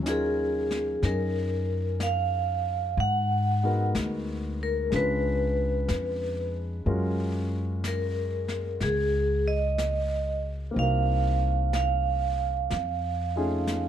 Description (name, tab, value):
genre	jazz ballad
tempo	62 BPM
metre	4/4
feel	swing 67% on 8ths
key	unclear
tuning	A4 = 440 Hz
part	warm grand piano	accompaniment	0.0-13.9 s	Gb3 to Cb5	-33 LUFS	left 2 dB	none
part	upright bass	bass	0.0-13.9 s	C2 to Ab2	-28 LUFS	left 1 dB	none
part	vibraphone with medium hard mallets	melody	0.1-13.9 s	Ab4 to Gb5	-28 LUFS	right 2 dB	plate reverb
part	jazz brush drum kit	drums	0.1-13.9 s	brushed snare drum, hi-hat, snare drum	-38 LUFS	left 2 dB	none
room	little or no reverb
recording	dark, warm production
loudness	-25 LUFS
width	side -10 dB against mid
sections	0.0-13.9 A section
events	drum fill 13.7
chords	0.0 Ebm9; 3.0 Abm9; 4.9 Db7b9; 6.9 Gbmaj9; 10.8 Cm7b5; 12.7 F7alt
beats	0.05 1.02 1.99 | 2.96 3.94 4.91 5.89 | 6.86 7.83 8.81 9.78 | 10.76 11.73 12.70 13.68